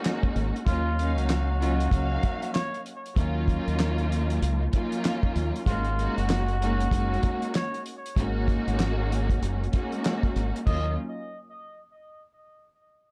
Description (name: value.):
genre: hip hop, boom-bap hip-hop.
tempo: 96 BPM.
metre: 4/4.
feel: swing 62% on 16ths.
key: Eb minor.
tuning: A4 = 438 Hz.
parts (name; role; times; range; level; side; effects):
warm symphonic string section; accompaniment; 0.0-10.9 s; Gb3 to F5; -32 LUFS; equal; cassette tape, high-pass filter, low-pass filter.
cloth-damped thuddy drum kit; drums; 0.0-10.8 s; crash cymbal, handclaps, hi-hat, kick drum, snare drum; -29 LUFS; equal; none.
deep dub fingered electric bass; bass; 0.4-11.0 s; Gb1 to Eb2; -29 LUFS; equal; none.
trumpet with cup mute; melody; 0.7-11.0 s; F4 to Eb5; -36 LUFS; equal; high-pass filter, low-pass filter, analog delay.
room: light reverb.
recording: dark, warm production.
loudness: -27 LUFS.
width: mono.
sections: 0.0-10.7 A section; 10.7-13.1 B section.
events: none.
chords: 0.0 Ab9sus4; 0.7 Ebm9; 5.7 Ab9sus4; 10.7 Ebm9.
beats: 0.04 | 0.67 1.29 1.92 2.54 | 3.17 3.79 4.42 5.04 | 5.67 6.29 6.92 7.54 | 8.17 8.79 9.42 10.04 | 10.67.